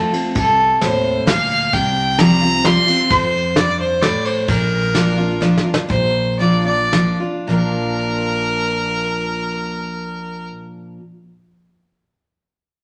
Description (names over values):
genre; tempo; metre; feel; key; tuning
honky-tonk and classic country; 105-131 BPM; 3/4; straight; Bb major; A4 = 440 Hz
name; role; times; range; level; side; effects
clear fiddle; melody; 0.0-10.5 s; A4 to C6; -20 LUFS; equal; none
picked steel-string acoustic guitar; accompaniment; 0.0-11.0 s; F2 to F4; -22 LUFS; equal; none
soft brush drum kit; drums; 0.1-7.0 s; hi-hat, kick drum, ride cymbal, snare drum; -24 LUFS; equal; none
upright bass; bass; 0.4-10.5 s; Bb1 to F2; -27 LUFS; equal; none
room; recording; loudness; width
wet large studio reverb, RT60 1.3 s; none; -17 LUFS; mono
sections
0.0-5.9 A section; 5.9-7.5 B section; 7.5-10.9 C section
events
slowing down 4.5-7.5; drum fill 5.4-5.9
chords
0.0 F; 1.7 Csus4; 3.1 F; 4.5 Bb